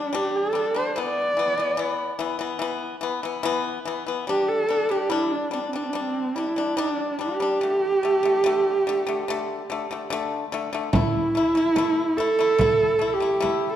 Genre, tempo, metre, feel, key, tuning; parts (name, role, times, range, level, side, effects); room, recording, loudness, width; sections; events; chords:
mongolian traditional, Mongolian folk; 72 BPM; 4/4; straight; G zhi mode; A4 = 440 Hz
warm horsehead fiddle; melody; 0.0-13.8 s; C4 to D5; -22 LUFS; right 2 dB
pipa; arpeggios; 0.0-13.8 s; D3 to E4; -27 LUFS; left 5 dB
frame drum; percussion; 10.9-13.6 s; -25 LUFS; right 1 dB
wet recital hall reverb, RT60 1.5 s; dark, warm production; -21 LUFS; side -10 dB against mid
0.0-10.9 A section; 10.9-13.8 B section
0.0 G5; 1.0 E5; 4.3 G5; 7.6 D5; 10.9 A5